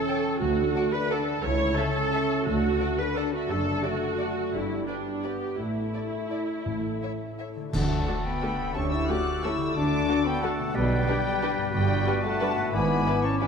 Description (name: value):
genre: classical, orchestral ballroom waltz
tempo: 158-193 BPM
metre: 3/4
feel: rubato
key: D major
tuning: A4 = 439 Hz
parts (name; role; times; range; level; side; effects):
- muted symphonic viola section; accompaniment; 0.0-13.5 s; E3 to C#5; -30 LUFS; right 3 dB; none
- warm French horn section; sustained chords; 0.0-13.5 s; G3 to F#4; -31 LUFS; left 3 dB; none
- concert harp; arpeggios; 0.0-13.5 s; F#2 to A5; -35 LUFS; left 6 dB; none
- muted symphonic violin section; melody; 0.1-13.5 s; E5 to F#6; -35 LUFS; left 4 dB; none
- muted studio violin section; second line; 0.1-13.5 s; E4 to G5; -38 LUFS; left 3 dB; none
- muted symphonic cello section; bass; 0.4-13.0 s; C#2 to D3; -33 LUFS; right 3 dB; none
- muted symphonic double bass section; bass; 0.4-13.0 s; F#1 to D2; -33 LUFS; right 3 dB; none
- timpani; percussion; 0.4-2.9, 6.7-8.2 s; A2 to D3; -37 LUFS; equal; none
- silver concert flute; second line; 7.7-13.5 s; D5 to D6; -33 LUFS; left 2 dB; none
- warm clarinet; second line; 7.7-13.5 s; E4 to G4; -37 LUFS; left 3 dB; none
- warm oboe; second line; 7.7-13.5 s; A4 to D5; -35 LUFS; right 1 dB; none
- clash cymbals and concert bass drum; percussion; 7.7-8.4 s; none; -33 LUFS; equal; none
room: wet scoring stage reverb, RT60 2.2 s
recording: dark, warm production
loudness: -24 LUFS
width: side -6 dB against mid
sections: 0.0-7.7 A section; 7.7-13.5 B section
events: band accent 7.7-8.1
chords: 0.4 D; 1.4 A/C#; 2.5 D; 3.5 D/F#; 4.5 G; 5.6 Asus4; 6.7 A; 7.7 D; 8.7 A7/D; 9.8 D; 10.8 G/B; 11.7 Gmaj7; 12.7 E7/G#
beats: 0.09 | 0.42 0.76 1.11 | 1.45 1.78 2.13 | 2.47 2.81 3.16 | 3.49 3.83 4.19 | 4.53 4.87 5.23 | 5.58 5.94 6.31 | 6.66 7.02 7.39 | 7.74 8.07 8.42 | 8.75 9.08 9.43 | 9.76 10.08 10.43 | 10.75 11.08 11.42 | 11.74 12.07 12.41 | 12.73 13.06 13.41